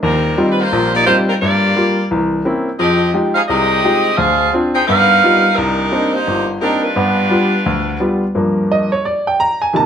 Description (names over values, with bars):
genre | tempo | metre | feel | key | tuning
jazz | 173 BPM | 4/4 | swing 63% on 8ths | unclear | A4 = 440 Hz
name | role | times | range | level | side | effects
clear saxophone section | melody | 0.0-8.2 s | G3 to G5 | -15 LUFS | right 1 dB | none
clear baby grand piano | accompaniment | 0.0-9.9 s | G1 to Bb5 | -15 LUFS | equal | none
room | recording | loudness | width
wet large studio reverb, RT60 1.4 s | none | -12 LUFS | side -8 dB against mid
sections
0.0-8.3 A section; 8.3-9.9 B section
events
grand piano solo 8.3-9.9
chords
0.0 Eb69; 1.4 Gm7; 2.1 C7b9; 2.8 Fm9; 4.2 Dm7b5; 4.9 G7alt; 5.6 Cm9; 7.0 G7; 8.3 Gm7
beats
| 0.02 0.37 0.71 1.06 | 1.41 1.76 2.10 2.45 | 2.80 3.14 3.49 3.84 | 4.18 4.53 4.88 5.22 | 5.57 5.92 6.26 6.61 | 6.96 7.30 7.65 8.00 | 8.34 8.69 9.04 9.38 | 9.73